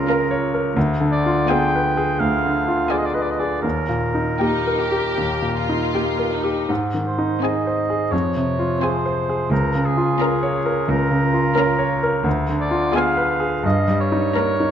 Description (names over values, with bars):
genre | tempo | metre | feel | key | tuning
classical, romantic movement for piano and orchestra | 77-90 BPM | 4/4 | rubato | unclear | A4 = 440 Hz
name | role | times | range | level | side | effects
bright concert grand piano | melody | 0.0-14.7 s | Db2 to Db5 | -20 LUFS | left 1 dB | none
warm oboe | second line | 0.0-14.7 s | Ab4 to G5 | -24 LUFS | right 2 dB | none
rich studio violin section | melody | 0.1-14.7 s | G5 to Bb5 | -31 LUFS | left 3 dB | none
clear studio violin section | second line | 0.1-14.7 s | Eb4 to G4 | -29 LUFS | left 3 dB | none
rich studio viola section | accompaniment | 0.1-14.7 s | Bb3 to Db4 | -30 LUFS | right 2 dB | none
rich studio cello section | bass | 0.8-14.2 s | Db2 to Bb2 | -27 LUFS | right 2 dB | none
room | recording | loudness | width
moderate scoring stage reverb, RT60 1.9 s | none | -18 LUFS | side -9 dB against mid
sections
0.0-14.7 A section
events
none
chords
0.0 Bbm/Db; 0.8 Ddim7; 3.6 Eb; 6.7 Ab; 8.1 Fm; 9.5 Bbm/Db; 12.3 Ddim7; 13.6 Eb7/G